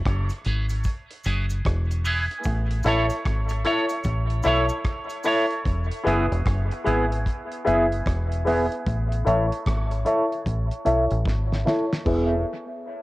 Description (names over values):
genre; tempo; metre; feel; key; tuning
dub reggae; 75 BPM; 4/4; swing 63% on 16ths; E major; A4 = 445 Hz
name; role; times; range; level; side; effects
deep dub fingered electric bass; bass; 0.0-12.4 s; E1 to B1; -24 LUFS; equal; none
damped 70s drum kit; drums; 0.1-12.3 s; crash cymbal, hi-hat, kick drum, rim click, snare drum; -28 LUFS; equal; cassette tape
clean electric guitar; accompaniment; 0.3-12.3 s; B3 to C#5; -27 LUFS; right 2 dB; high-pass filter, low-pass filter, dub echo
cabasa; percussion; 0.3-5.5 s; none; -44 LUFS; right 3 dB; high-pass filter on perc
dark grand piano; stabs; 0.4-12.4 s; E4 to E5; -26 LUFS; left 2 dB; high-pass filter, low-pass filter, dub echo
room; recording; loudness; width
moderate spring reverb, RT60 1.9 s, small room ambience; home recording on cassette; -21 LUFS; side -18 dB against mid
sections
0.0-12.1 A section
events
filter sweep 0.0-12.1; drum fill 11.3-12.1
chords
0.0 E; 2.5 A; 5.7 E; 8.9 A; 12.1 E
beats
0.05 0.85 1.65 | 2.45 3.25 4.05 4.86 | 5.66 6.46 7.26 8.06 | 8.86 9.66 10.46 11.26 | 12.06